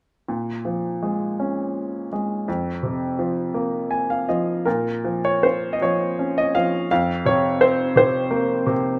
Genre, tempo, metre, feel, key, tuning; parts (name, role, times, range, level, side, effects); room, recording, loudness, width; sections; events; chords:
classical, lyrical solo piano; 54 BPM (dotted quarters); 6/8; uneven beats, rubato; Bb minor; A4 = 439 Hz
bright baby grand piano; solo; 0.3-9.0 s; F2 to Ab5; -22 LUFS; equal
moderate small room reverb, RT60 0.5 s; -22 LUFS; mono
0.3-4.7 A section; 4.7-9.0 B section
grand piano fill 3.5-4.7
0.3 Bbm7; 2.5 Fsus4; 4.7 Bbm; 6.9 Fsus4